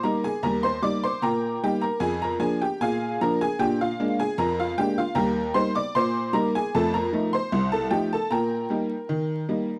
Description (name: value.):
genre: ragtime piano.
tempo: 76 BPM.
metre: 2/4.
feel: straight.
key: Eb major.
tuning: A4 = 440 Hz.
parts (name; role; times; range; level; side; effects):
tack piano; solo; 0.0-9.8 s; C2 to D6; -25 LUFS; equal; none.
room: studio reverb.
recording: dry, close 1970s-style studio recording, vinyl crackle.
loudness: -25 LUFS.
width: mono.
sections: 0.0-9.8 A section.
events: none.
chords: 0.0 Eb; 2.0 Bb7/F; 5.2 Eb; 6.7 F7; 8.3 Eb/Bb.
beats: | 0.44 1.23 | 2.02 2.81 | 3.60 4.38 | 5.17 5.95 | 6.74 7.52 | 8.31 9.10.